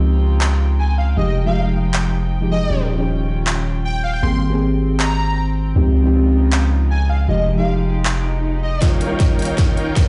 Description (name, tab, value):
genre	future bass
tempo	157 BPM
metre	4/4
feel	half-time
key	unclear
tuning	A4 = 440 Hz
part	soft round pluck	accompaniment	0.0-10.1 s	F3 to Db5	-25 LUFS	equal	lush chorus, cassette tape, sidechain pumping, tape echo
part	rich chamber string section	sustained chords	0.0-10.1 s	Eb2 to G5	-31 LUFS	equal	sidechain pumping, low-pass filter
part	long sustained 808-style bass	bass	0.0-8.8 s	Eb1 to Db2	-20 LUFS	equal	sidechain pumping
part	big-room dance drum kit	drums	0.4-10.0 s	handclaps, hi-hat, snare drum	-26 LUFS	equal	high-pass filter on hats, high-pass filter on snare, high-pass filter on room
part	airy dreamy lead	melody	0.8-8.8 s	Eb5 to C6	-28 LUFS	equal	chorus, sidechain pumping, tape echo
part	swell and riser	sound effects	8.2-10.1 s	none	-34 LUFS	equal	none
part	dense compressed supersaw	riff	8.8-10.1 s	Eb4 to G5	-25 LUFS	equal	sidechain pumping, low-pass filter
part	electronic kick drum	drums	8.8-10.0 s	none	-18 LUFS	equal	none
room	light reverb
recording	played on a big sound system in a bare room, large studio reverb, nothing above 10.9 kHz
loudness	-18 LUFS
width	mono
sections	0.0-8.8 A section; 8.8-10.1 B section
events	swell 8.2-8.8; build-up 8.8-10.1; drum fill 8.8-10.1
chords	0.0 Dbmaj9#11; 1.2 Fm9; 2.7 Eb9; 4.2 Abmaj9; 5.8 Dbmaj9#11; 7.3 Fm9; 8.8 Eb9